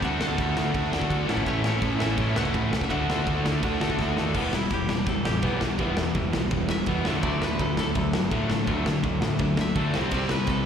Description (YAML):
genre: punk rock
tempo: 167 BPM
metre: 4/4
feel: straight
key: E minor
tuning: A4 = 440 Hz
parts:
  - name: koto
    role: melody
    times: 0.0-10.7 s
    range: B3 to A5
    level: -35 LUFS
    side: equal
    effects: slapback echo
  - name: distorted electric guitar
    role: riff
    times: 0.0-10.7 s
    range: E2 to D4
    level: -32 LUFS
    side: equal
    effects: distortion
  - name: overdriven electric guitar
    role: riff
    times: 0.0-10.6 s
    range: A2 to F#4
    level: -30 LUFS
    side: right 9 dB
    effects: slapback echo
  - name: tight distorted guitar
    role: riff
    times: 0.0-10.6 s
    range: A2 to A4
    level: -30 LUFS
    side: left 11 dB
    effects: distortion
  - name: growling picked electric bass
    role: bass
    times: 0.0-10.6 s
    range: E1 to D3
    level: -28 LUFS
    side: equal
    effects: overdrive
  - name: big rock drum kit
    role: drums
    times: 0.0-10.6 s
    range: crash cymbal, kick drum, ride cymbal, snare drum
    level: -29 LUFS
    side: equal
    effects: none
room: little or no reverb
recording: live gig heard through the venue's PA, recital hall reverb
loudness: -23 LUFS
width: side -8 dB against mid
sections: 0.0-4.4 A section; 4.4-10.7 B section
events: drum fill 4.0-4.4; koto solo 4.4-10.7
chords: 0.0 D; 1.3 A; 2.9 D; 4.4 Em; 7.1 D; 9.9 C